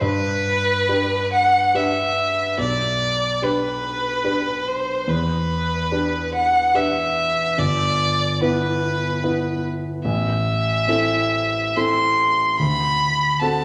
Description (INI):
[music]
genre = classical, romantic duo for violin and grand piano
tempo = 72 BPM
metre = 3/4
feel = rubato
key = G major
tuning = A4 = 440 Hz
[part]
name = clear violin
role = melody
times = 0.0-13.6 s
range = B4 to C6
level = -22 LUFS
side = equal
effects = none
[part]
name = dark concert grand piano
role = accompaniment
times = 0.0-13.6 s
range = G1 to B4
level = -25 LUFS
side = equal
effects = none
[sound]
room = wet recital hall reverb, RT60 1.6 s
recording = none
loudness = -20 LUFS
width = mono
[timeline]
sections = 0.0-13.6 A section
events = none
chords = 0.0 G; 2.6 G/B; 5.1 Em7; 7.6 Em/G; 10.0 Am; 12.6 D7